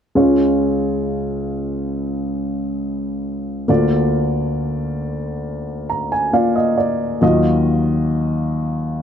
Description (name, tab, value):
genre	pop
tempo	68 BPM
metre	4/4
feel	straight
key	Db major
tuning	A4 = 442 Hz
part	warm grand piano	accompaniment	0.2-9.0 s	Db2 to Bb5	-17 LUFS	equal	none
room	light reverb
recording	dark, warm production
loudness	-17 LUFS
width	side -8 dB against mid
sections	0.2-9.0 A section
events	grand piano fill 5.5-7.2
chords	0.2 Db; 3.7 Bb/D; 7.2 Ebmadd9